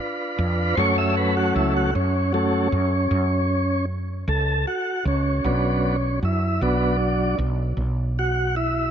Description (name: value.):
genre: slow blues.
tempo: 52 BPM (dotted quarters).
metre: 12/8.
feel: straight.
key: F# harmonic minor.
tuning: A4 = 440 Hz.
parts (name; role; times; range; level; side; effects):
tonewheel organ; sustained chords; 0.0-8.9 s; F#3 to E5; -22 LUFS; equal; slow rotary speaker.
woody fretless electric bass; bass; 0.4-8.9 s; B1 to F#2; -24 LUFS; right 1 dB; none.
room: light reverb, digital ambience.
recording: nothing above 10.5 kHz.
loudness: -20 LUFS.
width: side -8 dB against mid.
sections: 0.8-8.9 A section.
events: tonewheel organ solo 0.8-8.9.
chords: 0.0 C#7b9 (rootless); 0.8 F#m; 5.4 Bm.